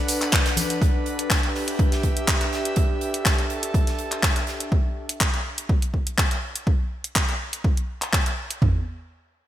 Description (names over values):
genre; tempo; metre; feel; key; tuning
piano house; 123 BPM; 4/4; swing 53% on 16ths; unclear; A4 = 439 Hz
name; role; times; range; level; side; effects
airy breathy pad; texture; 0.0-4.7 s; D4 to F#5; -28 LUFS; equal; chorus, sidechain pumping
big rock drum kit; drums; 0.1-4.6 s; hi-hat, snare drum; -34 LUFS; right 2 dB; sidechain pumping on hats, high-pass filter on hats, high-pass filter on snare, high-pass filter on room, gated reverb
house drum kit; drums; 0.1-8.6 s; handclaps, hi-hat, shaker; -25 LUFS; left 1 dB; gated reverb
tambourine and congas; percussion; 0.1-0.8 s; none; -30 LUFS; left 4 dB; none
punchy analog drum machine; drums; 0.3-8.7 s; kick drum, toms; -22 LUFS; equal; none
room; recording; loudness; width
light reverb, small room ambience; bright 1980s-style digital production; -21 LUFS; side -12 dB against mid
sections
0.0-8.6 A section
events
none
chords
0.0 Bm7; 0.8 Em7; 2.5 A7sus4; 4.7 N.C.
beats
0.33 | 0.81 1.30 1.79 2.28 | 2.77 3.25 3.74 4.23 | 4.72 5.21 5.69 6.18 | 6.67 7.16 7.64 8.13 | 8.62